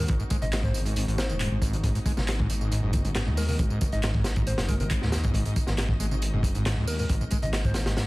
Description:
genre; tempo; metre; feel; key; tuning
breakbeat, breaks; 137 BPM; 4/4; straight; unclear; A4 = 444 Hz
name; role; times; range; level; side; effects
soft struck synth lead; melody; 0.0-7.8 s; A#4 to D#5; -37 LUFS; left 1 dB; chorus, old record sound, dub echo
muted studio string section; sustained chords; 0.0-8.1 s; G#3 to D#5; -38 LUFS; left 1 dB; vintage 12-bit sampler grit, sidechain pumping
overdriven acid bass; riff; 0.0-8.1 s; G#1 to G#3; -30 LUFS; equal; wide subtle chorus, cassette tape
detuned saw bass; bass; 0.0-8.0 s; D#1 to D#2; -28 LUFS; equal; tube saturation
crunchy breakbeat drum kit; drums; 0.1-8.1 s; hi-hat, kick drum, snare drum; -28 LUFS; equal; none
electronic tambourine and handclaps; drums; 0.1-8.1 s; none; -37 LUFS; right 1 dB; none
room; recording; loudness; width
small room ambience; dense, heavily limited modern master, vinyl crackle; -24 LUFS; side -21 dB against mid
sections
0.0-8.1 A section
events
none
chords
0.0 G#7

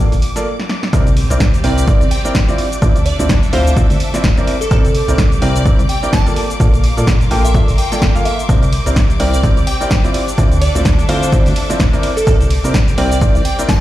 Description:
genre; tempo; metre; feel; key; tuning
piano house; 127 BPM; 4/4; swing 58% on 16ths; C mixolydian; A4 = 440 Hz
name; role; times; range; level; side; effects
rich studio violin section; sustained chords; 0.0-13.8 s; D6; -28 LUFS; equal; sidechain pumping
clear baby grand piano; riff; 0.0-13.7 s; Bb3 to G5; -20 LUFS; equal; sidechain pumping, tape echo
plucky analog bass; bass; 0.0-13.8 s; D1 to D2; -16 LUFS; equal; tube saturation, sidechain pumping
punchy analog drum machine; drums; 0.1-13.8 s; cabasa, hi-hat, ride cymbal, rim click, snare drum; -22 LUFS; equal; none
electronic kick drum; drums; 0.9-13.8 s; none; -14 LUFS; equal; none
impact; sound effects; 0.9-2.8 s; none; -22 LUFS; equal; none
bright studio string section; texture; 0.9-13.8 s; C4 to C6; -27 LUFS; right 1 dB; sidechain pumping
glassy wavetable pluck; melody; 1.6-13.8 s; A4 to A5; -23 LUFS; equal; chorus, tape echo
room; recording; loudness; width
little or no reverb; played on a big sound system in a bare room, large studio reverb; -11 LUFS; side -14 dB against mid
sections
0.9-13.8 A section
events
break 0.5-0.9; drum fill 0.6-0.9; drop 0.9-13.8; impact 0.9-2.8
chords
0.0 Bbmaj7; 0.9 C9; 2.6 Dm9; 4.5 C9; 6.4 Bbmaj7; 8.5 C9; 10.1 Dm9; 12.0 C9

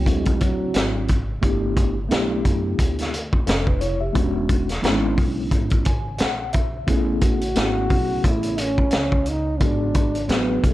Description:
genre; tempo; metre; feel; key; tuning
hip hop, jazz-hop; 88 BPM; 4/4; swing 58% on 16ths; unclear; A4 = 442 Hz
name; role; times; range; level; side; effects
breathy trombone; melody; 0.0-1.1, 7.2-10.7 s; F#3 to F#4; -24 LUFS; right 1 dB; plate reverb
mellow tine electric piano; accompaniment; 0.0-10.7 s; F#3 to G#5; -25 LUFS; left 1 dB; fast stereo tremolo, plate reverb
upright bass; bass; 0.0-10.7 s; E1 to F#2; -27 LUFS; equal; none
crunchy breakbeat drum kit; drums; 0.1-10.7 s; hi-hat, kick drum, snare drum; -21 LUFS; equal; none
room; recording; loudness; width
moderate studio reverb, RT60 0.6 s; dark, warm production; -19 LUFS; side -16 dB against mid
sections
0.0-10.7 A section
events
tine electric piano fill 5.5-6.9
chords
0.1 D9; 1.4 G6; 4.2 E13; 6.9 Amaj9; 9.6 G#m7b5

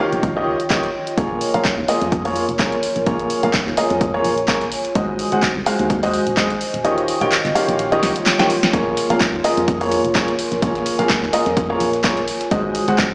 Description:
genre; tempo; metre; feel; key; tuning
piano house; 127 BPM; 4/4; swing 55% on 16ths; Bb minor; A4 = 440 Hz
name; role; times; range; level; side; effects
clear upright piano; riff; 0.0-13.0 s; Eb3 to G5; -19 LUFS; equal; sidechain pumping, digital delay
warbly tape-like pad; texture; 0.0-13.1 s; F4 to Ab5; -24 LUFS; equal; chorus, built-in reverb, sidechain pumping
solid FM bass; bass; 0.1-13.1 s; Eb1 to F2; -27 LUFS; equal; sidechain pumping
punchy analog drum machine; drums; 0.1-13.1 s; handclaps, hi-hat, snare drum; -22 LUFS; equal; none
electronic kick drum; drums; 0.2-13.1 s; none; -22 LUFS; equal; none
dusty soul sampler-style drum kit; drums; 8.7-13.1 s; ride cymbal, snare drum; -32 LUFS; equal; none
room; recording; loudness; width
moderate lush hall reverb, RT60 2.2 s; played on a big sound system in a bare room, large studio reverb, small speaker sound; -16 LUFS; side -32 dB against mid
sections
0.0-13.1 A section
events
kick drops out 6.8-8.7; drum fill 8.0-8.7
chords
0.0 Eb9; 1.2 Bbm7; 5.0 Ab7; 6.8 Eb9; 8.7 Bbm7; 12.5 Ab7

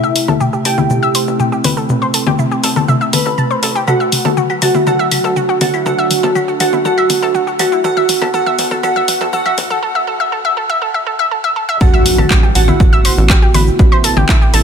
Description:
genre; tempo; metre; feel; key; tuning
melodic techno; 121 BPM; 4/4; straight; A dorian; A4 = 440 Hz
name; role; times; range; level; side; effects
expressive synth lead; melody; 0.0-13.9 s; E4 to B4; -18 LUFS; right 2 dB; lush chorus, sidechain pumping, dub echo
glassy wavetable pluck; second line; 0.0-13.9 s; E5 to B5; -23 LUFS; right 4 dB; chorus, sidechain pumping, ping-pong delay
sweeping resonant pad; sustained chords; 0.0-14.6 s; C3 to F#4; -22 LUFS; equal; chorus, sidechain pumping
analog pluck; arpeggios; 0.0-14.6 s; E4 to A6; -18 LUFS; left 1 dB; chorus, sidechain pumping, ping-pong delay
tight sequencer bass; bass; 0.0-14.6 s; G1 to D2; -20 LUFS; equal; sidechain pumping, high-pass filter
house drum kit; drums; 0.0-14.6 s; claves, congas, handclaps, hi-hat, shaker, toms; -16 LUFS; left 3 dB; small room ambience
electronic kick drum; drums; 11.8-14.4 s; none; -11 LUFS; equal; small room ambience
impact; sound effects; 11.8-13.8 s; none; -21 LUFS; right 1 dB; none
room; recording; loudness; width
light reverb; high-pass filter; -11 LUFS; side -7 dB against mid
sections
0.0-11.8 A section; 11.8-14.6 B section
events
build-up 0.0-11.8; drum fill 0.0-9.8; filter sweep on analog synth lead 0.0-11.8; filter sweep on synth pluck 0.0-11.8; filter sweep on analog synth pad 0.0-11.8; drop 11.8-14.6; impact 11.8-13.8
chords
0.0 Amadd9; 3.9 D; 11.8 Amadd9

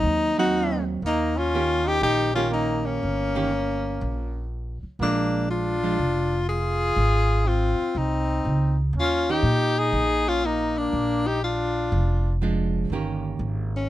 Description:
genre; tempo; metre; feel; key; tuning
jazz; 121 BPM; 4/4; swing 66% on 8ths; Eb mixolydian; A4 = 442 Hz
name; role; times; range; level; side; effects
clear tenor saxophone; melody; 0.0-13.9 s; Db4 to Ab4; -24 LUFS; left 3 dB; none
archtop guitar, miked and amplified; accompaniment; 0.0-6.0, 9.3-9.4, 12.4-13.9 s; Eb3 to G4; -28 LUFS; right 6 dB; none
upright bass; bass; 0.0-13.9 s; F1 to Bb2; -26 LUFS; equal; none
breathy trumpet; second line; 0.4-12.4 s; Bb3 to F4; -29 LUFS; right 3 dB; none
room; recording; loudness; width
little or no reverb; close, detailed microphones; -21 LUFS; side -14 dB against mid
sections
0.0-12.9 A section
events
none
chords
0.0 Ab7 (rootless); 1.0 Eb7; 5.0 Bb7; 7.0 Ab; 9.0 Eb7; 10.9 Bb7; 12.9 Eb7

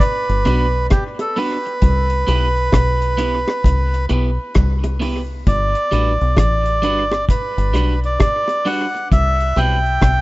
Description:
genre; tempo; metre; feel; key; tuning
roots reggae; 66 BPM; 4/4; swing 63% on 16ths; G major; A4 = 442 Hz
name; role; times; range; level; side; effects
melodica; melody; 0.0-10.2 s; G4 to G5; -20 LUFS; right 1 dB; dub echo
deep reggae drum kit; drums; 0.0-10.2 s; hi-hat, kick drum, rim click; -17 LUFS; equal; none
deep dub fingered electric bass; bass; 0.3-10.2 s; G1 to C2; -18 LUFS; equal; none
electric guitar at the edge of break-up; accompaniment; 0.5-9.8 s; G3 to B4; -26 LUFS; right 2 dB; dub echo
bongos; percussion; 0.5-10.2 s; none; -27 LUFS; right 1 dB; none
room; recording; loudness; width
small room ambience; rough home demo mix, nothing above 7.7 kHz; -15 LUFS; side -20 dB against mid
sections
0.0-10.2 A section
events
none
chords
0.0 Gmaj7 (rootless); 1.8 Cmaj7; 5.5 Gmaj7; 9.1 Cmaj7

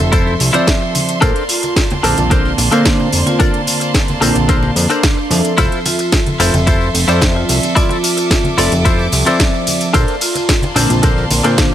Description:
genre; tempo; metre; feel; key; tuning
nu-disco, nu disco; 110 BPM; 4/4; straight; F major; A4 = 440 Hz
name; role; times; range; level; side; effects
bell-like tine electric piano; accompaniment; 0.0-11.7 s; D3 to A5; -19 LUFS; equal; phaser
clear studio violin section; sustained chords; 0.0-11.7 s; Bb3 to D6; -23 LUFS; right 1 dB; sidechain pumping
fat analog bass; bass; 0.0-11.7 s; F1 to Bb2; -16 LUFS; equal; sidechain pumping
house drum kit; drums; 0.0-11.7 s; hi-hat, ride cymbal, snare drum, tambourine; -18 LUFS; equal; none
tambourine and congas; percussion; 0.0-11.7 s; none; -25 LUFS; right 1 dB; none
direct-recorded clean electric guitar; riff; 0.1-11.7 s; D4 to D5; -18 LUFS; left 2 dB; analog chorus
electronic kick drum; drums; 0.1-11.7 s; none; -15 LUFS; equal; none
vibraphone with hard mallets; melody; 1.2-11.7 s; D4 to A4; -23 LUFS; right 2 dB; tape echo
room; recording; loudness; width
digital ambience; none; -11 LUFS; side -11 dB against mid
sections
0.0-11.7 A section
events
none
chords
0.0 Fmaj7; 1.2 Bbmaj9; 5.6 Fmaj7; 9.9 Bbmaj9

